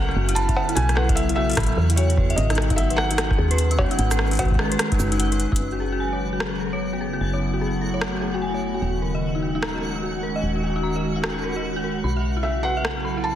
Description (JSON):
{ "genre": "IDM", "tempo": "149 BPM", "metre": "4/4", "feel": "swing 62% on 16ths", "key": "F# dorian", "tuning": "A4 = 442 Hz", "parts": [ { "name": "felt-muted upright piano", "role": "melody", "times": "0.0-5.1, 12.4-13.4 s", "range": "C#5 to A5", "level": "-27 LUFS", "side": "right 1 dB", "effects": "tape echo" }, { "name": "glassy FM pad", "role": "sustained chords", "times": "0.0-13.4 s", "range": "C#3 to B4", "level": "-27 LUFS", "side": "left 1 dB", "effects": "ensemble chorus, built-in reverb" }, { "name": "woody FM bass", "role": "bass", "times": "0.0-13.4 s", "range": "D#1 to E2", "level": "-25 LUFS", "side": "equal", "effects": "none" }, { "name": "twinkling granular texture", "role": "texture", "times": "0.1-13.4 s", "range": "F#4", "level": "-36 LUFS", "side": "right 3 dB", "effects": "built-in reverb" }, { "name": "dark detuned synth bell", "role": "arpeggios", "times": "0.1-13.3 s", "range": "D#4 to B5", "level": "-28 LUFS", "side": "left 1 dB", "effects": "chorus, phaser, low-pass filter, digital delay" }, { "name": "electro analog drum machine", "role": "drums", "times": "0.1-12.9 s", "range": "cabasa, cowbell, hi-hat, rim click", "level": "-27 LUFS", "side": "equal", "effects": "soft clipping on snare" }, { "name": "electronic kick drum", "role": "drums", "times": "0.5-5.6 s", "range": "none", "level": "-24 LUFS", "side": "equal", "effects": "none" } ], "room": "moderate lush hall reverb, RT60 1.8 s", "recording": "dense, heavily limited modern master", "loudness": "-20 LUFS", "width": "side -11 dB against mid", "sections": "0.0-5.6 A section; 5.6-13.4 B section", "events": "drum fill 5.4", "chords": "0.0 Bsus4; 2.4 G#m7; 5.6 F#madd9; 8.8 D#m; 12.0 Bsus4", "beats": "0.36 | 0.77 1.17 1.57 1.97 | 2.38 2.78 3.18 3.58 | 3.99 4.39 4.79 5.20 | 5.60 6.00 6.40 6.81 | 7.21 7.61 8.02 8.42 | 8.82 9.22 9.62 10.03 | 10.43 10.83 11.24 11.64 | 12.04 12.44 12.85 13.25" }